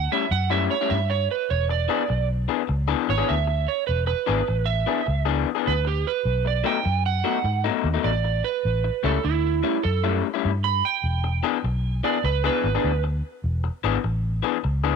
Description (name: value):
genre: blues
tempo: 100 BPM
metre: 4/4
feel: swing 66% on 8ths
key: unclear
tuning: A4 = 443 Hz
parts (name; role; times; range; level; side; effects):
- electric slide guitar; second line; 0.0-13.0 s; E4 to B5; -25 LUFS; right 14 dB; none
- vintage muted fingered electric bass; bass; 0.0-15.0 s; E1 to G#2; -24 LUFS; equal; none
- electric guitar through a small old amp; riff; 0.1-15.0 s; A2 to G#4; -25 LUFS; left 16 dB; none
room: little or no reverb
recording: 1960s-style stereo with parts hard left and right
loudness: -21 LUFS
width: side -6 dB against mid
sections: 0.0-15.0 A section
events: electric slide guitar solo 0.0-15.0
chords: 0.0 A7; 1.5 E7; 6.3 B7; 8.7 A7; 11.0 E7